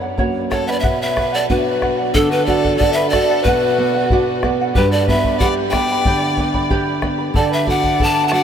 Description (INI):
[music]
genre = andean folk, Andean ensemble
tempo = 92 BPM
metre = 2/4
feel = straight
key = B minor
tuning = A4 = 440 Hz
[part]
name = charango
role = accompaniment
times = 0.0-8.4 s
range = G4 to B5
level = -23 LUFS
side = right 3 dB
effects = none
[part]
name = nylon-string guitar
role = accompaniment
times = 0.0-8.4 s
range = F#2 to A4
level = -20 LUFS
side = right 2 dB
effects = none
[part]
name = bombo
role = percussion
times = 0.2-8.4 s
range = none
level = -22 LUFS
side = left 1 dB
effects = none
[part]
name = breathy mellow pan flute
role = melody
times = 0.5-8.4 s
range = A4 to A5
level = -18 LUFS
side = equal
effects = none
[part]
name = rich violin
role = second line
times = 0.5-8.4 s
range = D4 to F#5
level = -24 LUFS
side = left 3 dB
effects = none
[sound]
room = wet huge ambient reverb, RT60 7.1 s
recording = in a vast, echoing space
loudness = -14 LUFS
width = side -8 dB against mid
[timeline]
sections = 0.0-2.1 A section; 2.1-8.4 B section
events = none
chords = 0.0 F#; 0.8 Bm; 2.1 D; 3.4 Bm; 4.8 G; 7.3 D